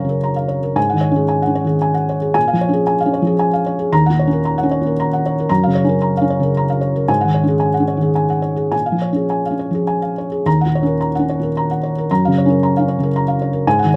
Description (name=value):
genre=neoclassical minimalist piano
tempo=102-117 BPM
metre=3/4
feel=rubato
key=Eb minor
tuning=A4 = 440 Hz
part: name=felt-muted upright piano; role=solo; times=0.0-14.0 s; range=Eb2 to Bb5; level=-17 LUFS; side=equal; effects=none
room=light reverb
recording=none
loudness=-17 LUFS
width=mono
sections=0.0-10.5 A section; 10.5-14.0 A section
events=none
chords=0.0 Gbmaj7; 0.8 Ab7sus4; 2.4 Bbm7; 3.9 Ebm7; 5.5 Gbmaj7; 7.1 Ab7sus4; 8.7 Bbm7; 10.5 Ebm7; 12.1 Gbmaj7